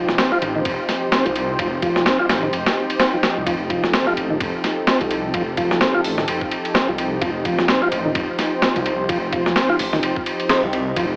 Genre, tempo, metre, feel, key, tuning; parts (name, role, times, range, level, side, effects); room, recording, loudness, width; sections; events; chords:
breakbeat, breaks; 128 BPM; 4/4; swing 58% on 16ths; A4 = 440 Hz
lush unison pad; sustained chords; 0.0-11.2 s; F3 to C5; -26 LUFS; equal; chorus, sidechain pumping
percussive tonewheel organ; riff; 0.0-11.1 s; Eb3 to F4; -25 LUFS; equal; chorus vibrato, fast rotary speaker, dub echo
detuned saw bass; bass; 0.0-11.2 s; F1 to C2; -31 LUFS; equal
breakbeat sampler-style drum kit; drums; 0.1-11.1 s; hi-hat, kick drum, ride cymbal, snare drum; -24 LUFS; equal
light reverb; vinyl crackle, AM radio sound; -20 LUFS; mono
0.0-11.2 A section
0.0 F7